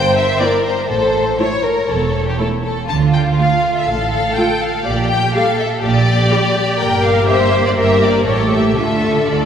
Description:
quick classical-period movement for string orchestra; 122 BPM; 4/4; straight; D minor; A4 = 440 Hz
warm symphonic violin section; melody; 0.0-9.5 s; C5 to A5; -19 LUFS; left 2 dB
rich symphonic violin section; second line; 0.0-9.5 s; F4 to C#5; -18 LUFS; left 2 dB
dark symphonic double bass section; bass; 0.0-9.5 s; E1 to D2; -21 LUFS; right 2 dB
rich symphonic cello section; bass; 0.0-9.5 s; E2 to D3; -21 LUFS; right 4 dB
clear symphonic viola section; accompaniment; 0.4-9.5 s; G3 to G4; -21 LUFS; right 2 dB
wet church reverb, RT60 3.4 s; recorded in a church or concert hall; -13 LUFS; side -8 dB against mid
0.0-9.5 A section
0.0 Edim/G; 0.9 A; 2.9 Dm; 4.9 Gm/Bb; 6.8 Gm; 8.3 A7; 8.8 Dm

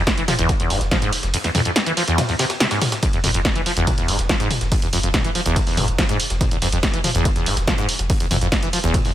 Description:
driving peak-time techno; 142 BPM; 4/4; straight; F harmonic minor; A4 = 440 Hz
acid bass, saw; riff; 0.0-9.1 s; E2 to F3; -22 LUFS; equal; lush chorus, sidechain pumping, ping-pong delay
saturated sub bass; bass; 0.0-9.1 s; F1; -25 LUFS; equal; sidechain pumping, low-pass filter
breakbeat sampler-style drum kit; drums; 0.1-9.0 s; hi-hat, ride cymbal, snare drum; -30 LUFS; right 2 dB
electronic kick drum; drums; 0.1-9.0 s; -22 LUFS; equal
punchy analog drum machine; drums; 0.1-9.1 s; hi-hat, snare drum, toms; -22 LUFS; equal; sidechain pumping on hats, sidechain pumping on toms
light reverb, digital ambience; -17 LUFS; side -12 dB against mid
0.0-9.1 A section

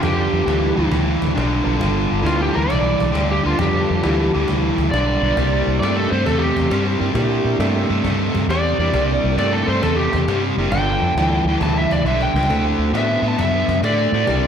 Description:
blues rock power trio and southern rock; 135 BPM; 4/4; swing 68% on 8ths; G mixolydian; A4 = 439 Hz
overdriven slide guitar; melody; 0.0-14.5 s; F4 to A5; -22 LUFS; equal
tonewheel organ; sustained chords; 0.0-14.5 s; Bb3 to B4; -28 LUFS; right 4 dB; chorus vibrato, lush chorus
overdriven electric guitar; riff; 0.0-14.5 s; G2 to B3; -20 LUFS; equal; slapback echo
vintage muted fingered electric bass; bass; 0.0-14.5 s; F#1 to Bb2; -21 LUFS; equal
cajon; drums; 0.0-14.4 s; -29 LUFS; equal; slapback echo
moderate lush hall reverb, RT60 1.7 s, digital ambience; big arena sound, lossy compression artefacts; -16 LUFS; side -8 dB against mid
0.0-14.5 A section
drum fill 12.0-12.5
0.0 G7; 5.4 C7; 10.7 G7; 12.5 D7

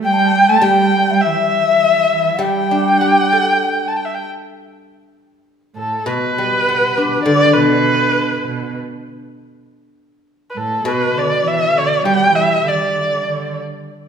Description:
chinese traditional, Chinese chamber ensemble; 100 BPM; 4/4; rubato; G gong mode; A4 = 440 Hz
dark erhu; melody; 0.0-13.6 s; A4 to A5; -16 LUFS; equal
warm cello; second line; 0.0-13.5 s; A2 to A3; -22 LUFS; right 7 dB
guzheng; accompaniment; 0.0-13.9 s; B2 to A4; -21 LUFS; left 2 dB
breathy hollow xiao; second line; 0.1-3.9 s; E5 to A5; -18 LUFS; left 5 dB
wet recital hall reverb, RT60 1.8 s; minimal, uncompressed stereo recording; -13 LUFS; side -7 dB against mid
0.0-4.9 A section; 4.9-14.1 B section

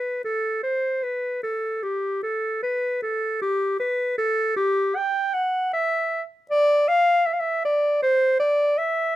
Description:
classical, baroque-style fantasia for unaccompanied clarinet; 78 BPM; 4/4; rubato; E minor; A4 = 440 Hz
bright clarinet; solo; 0.0-9.2 s; G4 to G5; -21 LUFS; equal
light reverb; minimal, uncompressed stereo recording; -21 LUFS; side -14 dB against mid
0.0-9.2 A section

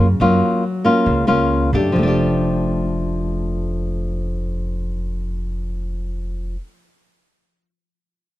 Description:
bossa nova; 128-145 BPM; 4/4; straight; F major; A4 = 440 Hz
nylon-string guitar; accompaniment; 0.0-6.7 s; Db3 to G4; -19 LUFS; left 1 dB
upright bass; bass; 0.0-6.5 s; F1 to Gb2; -21 LUFS; equal
little or no reverb; close, detailed microphones; -17 LUFS; side -15 dB against mid
0.0-2.0 A section; 2.0-5.7 B section
slowing down 0.0-2.0
0.0 Gbmaj7; 2.0 F69

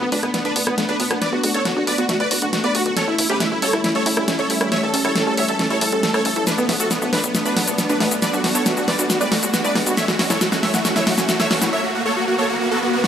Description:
uplifting trance; 137 BPM; 4/4; straight; B minor; A4 = 440 Hz
supersaw chords; melody; 0.0-13.1 s; B3 to E5; -21 LUFS; equal; analog chorus, digital delay
lush unison pad; sustained chords; 0.0-11.7 s; F#3 to E4; -26 LUFS; left 1 dB; chorus
analog pluck; arpeggios; 0.0-11.7 s; A3 to E4; -28 LUFS; right 2 dB; chorus, digital delay
tight sequencer bass; bass; 0.0-11.7 s; F#1 to A2; -30 LUFS; equal; high-pass filter
riser and swell; sound effects; 1.6-13.1 s; -27 LUFS; right 1 dB
big-room dance drum kit; drums; 0.1-13.1 s; hi-hat, rim click, shaker, snare drum; -21 LUFS; equal
moderate digital room reverb, RT60 1.1 s; -17 LUFS; side -9 dB against mid
0.0-13.1 A section
build-up 0.0-13.1; drum fill 0.0-11.7; filter sweep on synth pluck 0.0-13.1; riser 1.6-13.1; swell 12.6-13.1
0.0 Bm7; 3.0 A7; 6.5 Bm7; 10.0 F#m7

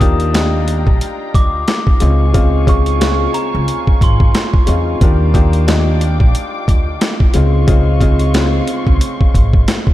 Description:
hip hop, boom-bap hip-hop; 90 BPM; 4/4; swing 58% on 16ths; A4 = 440 Hz
glockenspiel with soft plastic mallets; melody; 0.0-4.2 s; Bb5 to Eb6; -23 LUFS; right 2 dB; high-pass filter, low-pass filter, analog delay
clear upright piano; accompaniment; 0.0-9.9 s; Db3 to G4; -20 LUFS; left 3 dB; high-pass filter, low-pass filter
warm studio string section; sustained chords; 0.0-9.9 s; F4 to D6; -27 LUFS; left 1 dB; high-pass filter, low-pass filter
upright bass; bass; 0.0-9.6 s; Ab1 to Fb2; -14 LUFS; equal
boom bap sampler-style drum kit; drums; 0.0-9.9 s; hi-hat, kick drum, snare drum; -14 LUFS; equal
light reverb, small room ambience; -11 LUFS; side -14 dB against mid
0.0-9.9 A section
0.0 Ebmaj9; 2.0 Dbmaj9; 5.0 Ebmaj9; 7.3 Dbmaj9

